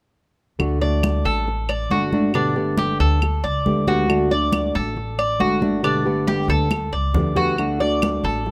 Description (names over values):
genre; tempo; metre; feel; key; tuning
latin, Cuban son and guajira; 137 BPM; 4/4; straight; D major; A4 = 440 Hz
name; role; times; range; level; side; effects
nylon-string guitar; accompaniment; 0.6-8.5 s; B2 to G4; -25 LUFS; equal; none
upright bass; bass; 0.6-8.5 s; G1 to D2; -27 LUFS; equal; none
claves; percussion; 0.6-8.2 s; none; -30 LUFS; equal; none
congas; percussion; 0.6-8.5 s; none; -28 LUFS; equal; none
Cuban tres; arpeggios; 0.8-8.5 s; D4 to D5; -25 LUFS; equal; none
room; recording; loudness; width
light reverb; close, detailed microphones; -20 LUFS; mono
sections
0.6-8.5 A section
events
drum fill 6.7-7.6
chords
0.6 D; 2.3 Gadd9; 4.1 D; 5.8 Gadd9; 7.6 D